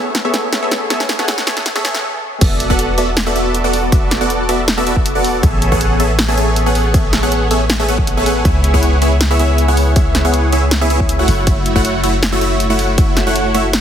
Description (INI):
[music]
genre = future bass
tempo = 159 BPM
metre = 4/4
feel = half-time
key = unclear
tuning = A4 = 439 Hz
[part]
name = supersaw stab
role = riff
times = 0.0-13.7 s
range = A3 to F#5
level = -16 LUFS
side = equal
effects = sidechain pumping, ping-pong delay
[part]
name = big-room dance drum kit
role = drums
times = 0.1-13.8 s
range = crash cymbal, hi-hat, snare drum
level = -19 LUFS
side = equal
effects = none
[part]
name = long sustained 808-style bass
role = bass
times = 2.4-13.8 s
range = E1 to C#2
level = -17 LUFS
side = equal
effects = sidechain pumping
[part]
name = electronic kick drum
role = drums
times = 2.4-13.1 s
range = none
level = -16 LUFS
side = equal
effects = none
[sound]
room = light reverb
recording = heavily compressed radio sound, multiband compression, high-pass filter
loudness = -12 LUFS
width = side -9 dB against mid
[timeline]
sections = 0.0-2.4 A section; 2.4-13.8 B section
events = build-up 0.0-2.4; drum fill 0.0-2.0; filter sweep on supersaw synth 0.0-2.4; stop 2.0-2.4; drop 2.4-13.8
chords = 0.0 Amaj9; 2.4 E9sus4; 5.4 Amaj9; 8.5 C#m7; 11.3 F#m7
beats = 0.15 0.53 | 0.90 1.28 1.66 2.04 | 2.41 2.79 3.17 3.54 | 3.92 4.30 4.68 5.05 | 5.43 5.81 6.19 6.56 | 6.94 7.32 7.70 8.07 | 8.45 8.83 9.21 9.58 | 9.96 10.34 10.71 11.09 | 11.47 11.85 12.22 12.60 | 12.98 13.36 13.73